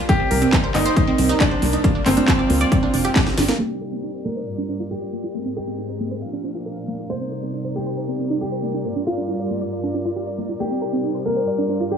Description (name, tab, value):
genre	uplifting trance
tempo	137 BPM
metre	4/4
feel	straight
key	C minor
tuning	A4 = 440 Hz
part	dark chamber string section	sustained chords	0.0-12.0 s	G2 to F5	-28 LUFS	equal	vintage 12-bit sampler grit, sidechain pumping
part	wide unison pluck	arpeggios	0.0-12.0 s	Bb3 to F5	-25 LUFS	right 4 dB	sidechain pumping, tape echo
part	tight sequencer bass	bass	0.0-3.5 s	F1 to D2	-22 LUFS	equal	sidechain pumping
part	warm baby grand piano	second line	0.1-12.0 s	C4 to C5	-25 LUFS	left 1 dB	tape echo
part	electronic kick drum	drums	0.1-3.2 s	none	-18 LUFS	left 1 dB	overdrive
part	techno drum kit	drums	0.1-3.6 s	congas, handclaps, hi-hat, snare drum	-24 LUFS	equal	overdrive
room	light reverb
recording	low-pass filter, studio ambience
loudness	-19 LUFS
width	side -7 dB against mid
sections	0.0-3.6 A section; 3.6-12.0 B section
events	drum fill 3.2-3.6; filter sweep on synth pluck 3.6-12.0; filter sweep 3.6-12.0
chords	0.1 Cm7; 1.8 Gm7; 3.6 Cm7; 4.5 Gm7; 5.3 Abadd9; 6.2 Bb; 7.1 Cm7; 8.8 Gm7; 10.6 Cm7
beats	| 0.09 0.53 0.97 1.40 | 1.84 2.28 2.72 3.16 | 3.59 4.03 4.47 4.91 | 5.35 5.78 6.22 6.66 | 7.10 7.54 7.97 8.41 | 8.85 9.29 9.72 10.16 | 10.60 11.04 11.48 11.91